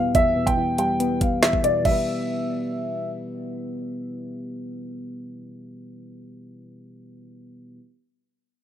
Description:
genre	hip hop, drill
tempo	141 BPM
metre	4/4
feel	half-time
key	E minor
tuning	A4 = 440 Hz
part	dark grand piano	melody	0.0-3.1 s	D5 to G5	-23 LUFS	equal	low-pass filter
part	soft electric-piano-like synth keys	accompaniment	0.0-7.8 s	E2 to B3	-28 LUFS	left 1 dB	chorus, low-pass filter
part	drill drum kit	drums	0.1-1.9 s	crash cymbal, finger snaps, hi-hat, kick drum, snare drum	-23 LUFS	equal	none
room	light reverb, digital ambience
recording	rough home demo mix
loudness	-22 LUFS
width	side -10 dB against mid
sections	0.0-1.9 A section; 1.9-5.3 B section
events	filter sweep 0.0-1.9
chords	0.0 Em

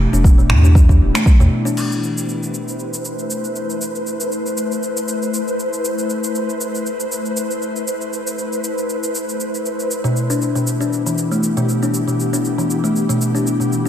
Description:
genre	afro house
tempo	118 BPM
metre	4/4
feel	swing 55% on 16ths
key	A minor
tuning	A4 = 436 Hz
part	ethereal airy pad	sustained chords	0.0-13.9 s	E3 to C5	-22 LUFS	left 1 dB	ensemble chorus, built-in reverb, sidechain pumping
part	warm sub bass	bass	0.0-1.5 s	D1 to E2	-13 LUFS	equal	sidechain pumping
part	kalimba	arpeggios	0.1-1.7, 10.0-13.9 s	B2 to D4	-19 LUFS	left 1 dB	sidechain pumping, dub echo
part	afro-pop drum kit	drums	0.1-13.9 s	crash cymbal, finger snaps, shaker, toms	-25 LUFS	right 1 dB	overdrive, studio reverb
part	electronic kick drum	drums	0.2-1.4 s	none	-10 LUFS	equal	overdrive, studio reverb
room	light reverb, digital ambience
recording	none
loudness	-16 LUFS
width	side -10 dB against mid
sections	0.0-1.8 A section; 1.8-13.9 B section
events	none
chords	0.0 Em7; 1.8 Am; 9.9 Em

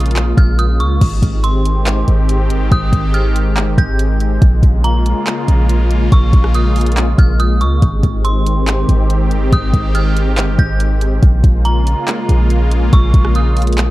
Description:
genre	hip hop, atmospheric cloud-rap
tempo	141 BPM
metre	4/4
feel	half-time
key	Ab major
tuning	A4 = 442 Hz
part	dark detuned synth bell	melody	0.0-13.9 s	Bb5 to G6	-23 LUFS	right 1 dB	chorus, tape echo
part	sweeping resonant pad	sustained chords	0.0-13.9 s	Db3 to G4	-20 LUFS	left 1 dB	chorus, sidechain pumping
part	warm 808-style bass	bass	0.0-13.9 s	G1 to Db2	-13 LUFS	equal	none
part	smooth R&B drum kit	drums	0.0-13.9 s	crash cymbal, handclaps, hi-hat, kick drum, rim click	-15 LUFS	equal	none
room	digital ambience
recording	dark, warm production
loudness	-11 LUFS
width	side -17 dB against mid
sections	0.0-1.0 A section; 1.0-13.9 B section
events	none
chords	0.0 Bbm7; 1.0 Abmaj7; 4.4 Bbm7; 7.8 Abmaj7; 11.2 Bbm7

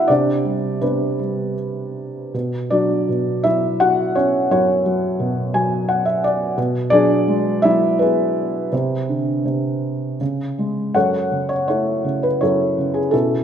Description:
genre	classical, lyrical solo piano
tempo	77-88 BPM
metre	3/4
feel	rubato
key	B dorian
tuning	A4 = 440 Hz
part	felt-muted upright piano	solo	0.0-13.4 s	F#2 to G#5	-17 LUFS	equal	none
room	moderate scoring stage reverb, RT60 1.5 s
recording	none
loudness	-17 LUFS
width	side -8 dB against mid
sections	0.0-11.0 A section; 11.0-13.4 B section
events	felt piano fill 5.2-6.6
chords	0.1 Csus2; 2.3 Bmadd9; 6.6 Eadd9/B; 8.7 Csus2; 10.2 C#5; 11.0 F#m7

